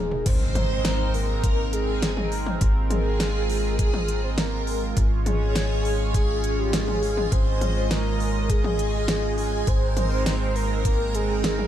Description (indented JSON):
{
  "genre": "synthwave",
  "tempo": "102 BPM",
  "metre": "4/4",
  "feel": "straight",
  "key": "Ab major",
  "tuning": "A4 = 440 Hz",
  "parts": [
    { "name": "soft octave-layered synth lead", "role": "melody", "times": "0.0-11.7 s", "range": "G4 to C5", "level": "-30 LUFS", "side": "equal", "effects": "chorus, tremolo, digital delay" },
    { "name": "chorused pulse-width pad", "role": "sustained chords", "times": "0.0-11.7 s", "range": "Ab3 to Eb5", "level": "-30 LUFS", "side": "right 3 dB", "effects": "sidechain pumping" },
    { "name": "tight sequencer bass", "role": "bass", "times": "0.0-11.7 s", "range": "Eb1 to Ab1", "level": "-26 LUFS", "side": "equal", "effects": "tube saturation, sidechain pumping" },
    { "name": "pop drum kit", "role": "drums", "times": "0.1-11.7 s", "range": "crash cymbal, hi-hat, snare drum, toms", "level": "-29 LUFS", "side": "left 1 dB", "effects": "none" },
    { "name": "string machine, violins", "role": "second line", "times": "0.3-11.7 s", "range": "G4 to C5", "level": "-32 LUFS", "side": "right 1 dB", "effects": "ensemble chorus, digital delay" },
    { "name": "electronic kick drum", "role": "drums", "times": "0.3-11.0 s", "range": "none", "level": "-22 LUFS", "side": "equal", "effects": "none" },
    { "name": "impact", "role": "sound effects", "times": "0.3-2.6 s", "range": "none", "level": "-34 LUFS", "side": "equal", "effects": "none" }
  ],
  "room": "little or no reverb",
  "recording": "none",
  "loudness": "-21 LUFS",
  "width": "side -11 dB against mid",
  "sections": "0.3-11.7 A section",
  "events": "break 0.0; drum fill 0.0; impact 0.3-2.6",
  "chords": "0.3 Abadd9; 5.0 Db/Ab; 9.7 Abadd9",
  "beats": "| 0.26 0.85 1.44 2.03 | 2.62 3.20 3.79 4.38 | 4.97 5.56 6.14 6.73 | 7.32 7.91 8.50 9.09 | 9.67 10.26 10.85 11.44"
}